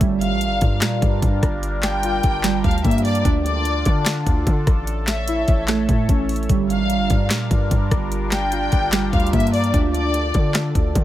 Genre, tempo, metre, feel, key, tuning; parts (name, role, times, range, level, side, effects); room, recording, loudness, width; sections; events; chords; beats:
hip hop, trap; 148 BPM; 4/4; half-time; D harmonic minor; A4 = 440 Hz
sweeping resonant pad; sustained chords; 0.0-11.0 s; D3 to E5; -27 LUFS; left 1 dB; chorus, phaser
warbly lo-fi synth keys; arpeggios; 0.0-11.0 s; G3 to F4; -24 LUFS; right 3 dB; chorus, digital delay
hard-hitting 808-style bass; bass; 0.0-11.0 s; G1 to D3; -23 LUFS; equal
trap drum kit; drums; 0.0-11.0 s; handclaps, hi-hat, kick drum, rim click, snare drum; -20 LUFS; equal
warm studio violin section; second line; 0.2-10.5 s; D5 to G5; -26 LUFS; left 2 dB; digital delay
little or no reverb; -17 LUFS; side -13 dB against mid
0.0-3.3 A section; 3.3-11.0 A section
0.0 Gm7; 3.3 Dm; 4.9 A; 6.5 Gm7; 9.7 Dm
| 0.01 0.41 0.82 1.23 | 1.63 2.04 2.44 2.85 | 3.25 3.66 4.06 4.47 | 4.87 5.28 5.68 6.09 | 6.50 6.90 7.31 7.71 | 8.12 8.52 8.93 9.33 | 9.74 10.14 10.55 10.96